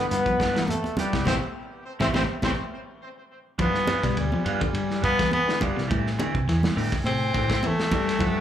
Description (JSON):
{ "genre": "afrobeat", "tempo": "104 BPM", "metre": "4/4", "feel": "swing 53% on 16ths", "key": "unclear", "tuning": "A4 = 440 Hz", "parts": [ { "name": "brilliant trombone", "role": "melody", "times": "0.0-2.5 s", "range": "G3 to C4", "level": "-28 LUFS", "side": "left 1 dB", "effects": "plate reverb, slapback echo, tape echo" }, { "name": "clear trumpet", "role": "second line", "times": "0.0-2.5 s", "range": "G4 to C5", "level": "-34 LUFS", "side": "right 3 dB", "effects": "plate reverb, slapback echo, tape echo" }, { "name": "electric guitar at the edge of break-up", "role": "arpeggios", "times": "0.0-8.4 s", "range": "A2 to G3", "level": "-30 LUFS", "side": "left 5 dB", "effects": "spring reverb, plate reverb, slapback echo" }, { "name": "fingered electric bass", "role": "bass", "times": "0.1-8.4 s", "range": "A1 to C3", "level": "-28 LUFS", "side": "equal", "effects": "none" }, { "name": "crunchy breakbeat drum kit", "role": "drums", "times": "0.1-8.3 s", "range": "hi-hat, kick drum, ride cymbal, snare drum", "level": "-29 LUFS", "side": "right 1 dB", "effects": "none" }, { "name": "congas", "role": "percussion", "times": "0.1-8.3 s", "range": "none", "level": "-30 LUFS", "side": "right 2 dB", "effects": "slapback echo" }, { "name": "electric guitar through a small old amp", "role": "stabs", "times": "0.4-8.4 s", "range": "E3 to G4", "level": "-33 LUFS", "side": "right 6 dB", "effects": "wide subtle chorus, plate reverb, slapback echo" }, { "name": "clear tenor saxophone", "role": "melody", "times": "3.6-8.4 s", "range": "G3 to C4", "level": "-26 LUFS", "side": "left 1 dB", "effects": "plate reverb, slapback echo" } ], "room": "moderate club ambience, RT60 0.5 s", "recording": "live gig heard through the venue's PA, club reverb", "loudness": "-22 LUFS", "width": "side -10 dB against mid", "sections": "0.0-3.6 A section; 3.6-8.4 B section", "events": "band accent 1.3-3.6; tenor saxophone solo 3.6-8.4", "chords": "0.0 G7; 1.3 Am; 3.6 G7; 5.9 Am7" }